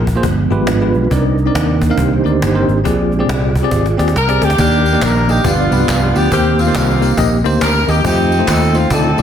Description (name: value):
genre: uptempo gospel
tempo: 138 BPM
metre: 4/4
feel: swing 62% on 8ths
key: unclear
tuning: A4 = 441 Hz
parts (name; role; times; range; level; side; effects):
- bell-like tine electric piano; accompaniment; 0.0-9.2 s; G2 to F5; -18 LUFS; left 3 dB; fast stereo tremolo
- mellow tonewheel organ; sustained chords; 0.0-9.2 s; Eb3 to D5; -19 LUFS; right 5 dB; fast rotary speaker, chorus vibrato
- fingered electric bass; bass; 0.0-9.2 s; G1 to F2; -16 LUFS; equal; none
- cajon; drums; 0.1-9.2 s; none; -22 LUFS; equal; none
- clear saxophone section; melody; 4.2-9.2 s; Bb3 to Bb4; -16 LUFS; equal; none
- tambourine and handclaps; percussion; 4.6-9.2 s; none; -25 LUFS; left 1 dB; none
room: moderate large studio reverb, RT60 1.2 s, small room ambience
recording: dense, heavily limited modern master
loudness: -11 LUFS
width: side -9 dB against mid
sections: 0.0-4.6 A section; 4.6-9.2 B section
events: tonewheel organ solo 0.0-4.6; drum fill 3.7-4.6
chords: 0.2 G7b9; 1.1 Cm9; 2.8 Bb13; 4.6 Ebmaj7; 5.5 G7; 6.3 Cm7; 8.0 F7